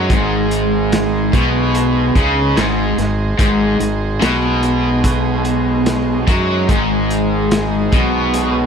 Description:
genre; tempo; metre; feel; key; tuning
psychedelic rock; 73 BPM; 4/4; straight; Ab mixolydian; A4 = 440 Hz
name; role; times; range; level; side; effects
combo organ; sustained chords; 0.0-8.7 s; Ab3 to C5; -24 LUFS; right 6 dB; none
raw garage guitar; riff; 0.0-8.7 s; Ab2 to Gb3; -16 LUFS; left 1 dB; overdrive, harmonic tremolo
fuzz fingered electric bass; bass; 0.0-8.7 s; Ab1 to Gb2; -20 LUFS; equal; overdrive
crunchy breakbeat drum kit; drums; 0.1-8.5 s; hi-hat, kick drum, snare drum; -18 LUFS; equal; none
room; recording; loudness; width
light reverb, small room ambience; none; -13 LUFS; side -6 dB against mid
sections
0.0-8.7 A section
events
none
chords
0.0 Ab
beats
| 0.10 0.92 1.75 2.57 | 3.39 4.22 5.04 5.87 | 6.69 7.51 8.34

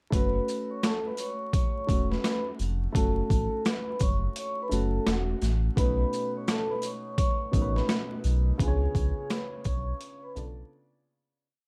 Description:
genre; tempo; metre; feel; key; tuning
hip hop, boom-bap hip-hop; 85 BPM; 4/4; swing 63% on 16ths; F# harmonic minor; A4 = 440 Hz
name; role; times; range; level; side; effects
vibraphone with soft mallets; melody; 0.1-10.7 s; F#4 to C#6; -35 LUFS; equal; high-pass filter, low-pass filter, slapback echo
dark upright piano; accompaniment; 0.1-11.4 s; B2 to D5; -38 LUFS; equal; cassette tape, high-pass filter, low-pass filter
sub bass with octave; bass; 0.1-10.6 s; E1 to C#2; -30 LUFS; equal; none
boom bap sampler-style drum kit; drums; 0.1-10.6 s; hi-hat, kick drum, rim click, shaker, snare drum; -31 LUFS; equal; overdrive
sleigh bells; percussion; 0.1-10.6 s; none; -50 LUFS; equal; none
room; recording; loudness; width
light reverb; dark, warm production, vinyl crackle; -28 LUFS; mono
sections
0.1-11.4 hook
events
fade-out 8.6-11.4; break 10.7-11.4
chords
0.1 F#m; 5.8 B9; 8.6 C#7b9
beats
| 0.12 0.83 1.54 2.24 | 2.95 3.65 4.36 5.07 | 5.77 6.48 7.18 7.89 | 8.60 9.30 10.01 10.71

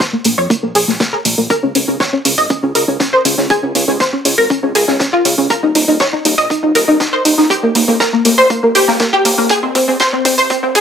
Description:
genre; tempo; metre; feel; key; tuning
progressive house; 120 BPM; 4/4; straight; unclear; A4 = 440 Hz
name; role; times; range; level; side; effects
analog pluck; arpeggios; 0.0-10.8 s; Bb3 to Eb5; -12 LUFS; equal; ensemble chorus, sidechain pumping, dub echo
electronic kick drum; drums; 0.0-10.8 s; none; -19 LUFS; equal; high-pass filter on kick, high-pass filter on room
vintage drum kit; drums; 0.0-10.8 s; hi-hat, snare drum; -21 LUFS; equal; sidechain pumping on hats, high-pass filter on hats, high-pass filter on snare, high-pass filter on room
fat analog bass; bass; 0.3-10.8 s; Eb1 to F2; -22 LUFS; equal; tube saturation, sidechain pumping, high-pass filter
electronic hi-hat; drums; 0.3-10.8 s; none; -17 LUFS; right 1 dB; none
room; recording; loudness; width
moderate digital room reverb, RT60 1.0 s, studio reverb; high-pass filter; -11 LUFS; side -8 dB against mid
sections
0.0-10.8 A section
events
build-up 0.0-10.8; filter sweep on synth pluck 0.0-10.8; drum fill 5.5-10.8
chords
0.0 Bb5; 1.5 Db5; 5.5 Eb5; 9.5 F5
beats
0.00 0.50 1.00 | 1.50 2.00 2.50 3.00 | 3.50 4.00 4.50 5.00 | 5.50 6.00 6.50 7.00 | 7.50 8.00 8.50 9.00 | 9.50 10.00 10.50

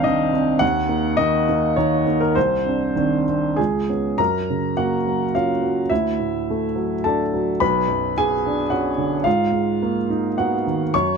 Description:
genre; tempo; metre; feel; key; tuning
neoclassical minimalist piano; 106 BPM; 3/4; rubato; unclear; A4 = 440 Hz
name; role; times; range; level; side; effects
warm upright piano; solo; 0.0-11.2 s; B1 to Db6; -18 LUFS; right 1 dB; none
room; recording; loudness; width
moderate studio reverb, RT60 0.6 s; none; -18 LUFS; side -5 dB against mid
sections
0.0-4.2 A section; 4.2-11.2 B section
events
none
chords
0.0 Cmadd9; 0.6 Ebm; 2.4 Cmadd9; 3.6 Db5; 4.2 Gb; 5.9 Dadd9; 7.6 Bmadd9; 9.3 Abmadd9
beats
0.05 | 0.61 1.19 1.77 | 2.35 2.96 3.58 | 4.18 4.76 5.33 | 5.90 6.47 7.04 | 7.60 8.15 8.71 | 9.26 9.81 10.37 | 10.93

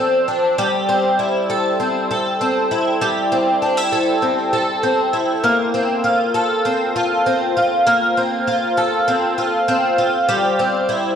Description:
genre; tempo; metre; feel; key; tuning
dream pop; 99 BPM; 4/4; straight; F major; A4 = 439 Hz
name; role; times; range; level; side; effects
picked twelve-string acoustic guitar; solo; 0.0-11.2 s; F3 to A4; -15 LUFS; equal; analog chorus, tape echo
room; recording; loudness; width
wet recital hall reverb, RT60 1.4 s; cassette tape; -15 LUFS; side -8 dB against mid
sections
0.0-5.4 A section; 5.4-11.2 B section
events
none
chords
0.0 F6; 0.6 C6/G; 5.4 Fadd11/Bb; 10.3 Am7/G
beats
| 0.59 1.20 1.80 2.41 | 3.02 3.62 4.23 4.83 | 5.44 6.05 6.65 7.26 | 7.87 8.47 9.08 9.68 | 10.29 10.89

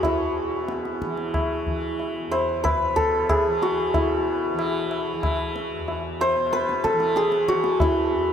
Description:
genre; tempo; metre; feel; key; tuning
indian classical, Hindustani; 93 BPM; 3/4; straight; E major; A4 = 441 Hz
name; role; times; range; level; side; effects
santur; melody; 0.0-8.3 s; E4 to C5; -22 LUFS; equal; none
tanpura; drone; 0.0-8.3 s; E2 to E3; -32 LUFS; equal; none
tabla; percussion; 0.0-8.0 s; none; -28 LUFS; left 1 dB; none
room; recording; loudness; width
wet huge ambient reverb, RT60 8.8 s; dreamy mix soaked in reverb; -21 LUFS; side -8 dB against mid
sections
0.0-3.9 A section; 3.9-8.3 B section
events
none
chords
none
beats
| 0.04 0.70 1.35 | 2.00 2.65 3.30 | 3.95 4.59 5.24 | 5.88 6.53 7.17 | 7.81

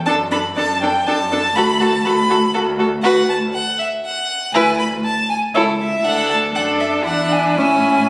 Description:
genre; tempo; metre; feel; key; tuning
quick classical-period movement for string quartet; 120 BPM; 3/4; rubato; D major, A major from 3.0 s; A4 = 443 Hz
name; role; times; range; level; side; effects
clear violin; melody; 0.1-8.1 s; C#5 to B5; -22 LUFS; equal; none
clear violin; second line; 0.1-8.1 s; E4 to B4; -24 LUFS; equal; none
rich viola; accompaniment; 0.1-8.1 s; C#4 to F#4; -22 LUFS; equal; none
rich cello; bass; 0.1-8.1 s; C#2 to A2; -26 LUFS; equal; none
room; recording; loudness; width
wet recital hall reverb, RT60 1.6 s; recorded on a phone in the room, studio reverb; -17 LUFS; mono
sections
0.0-8.1 A section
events
none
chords
0.1 D/F#; 1.6 D; 4.5 E5/D; 5.5 A/C#; 6.0 D; 7.0 E7; 7.6 A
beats
| 0.06 0.56 1.06 | 1.56 2.05 2.54 | 3.04 3.53 4.04 | 4.54 5.04 5.54 | 6.04 6.54 7.05 | 7.58

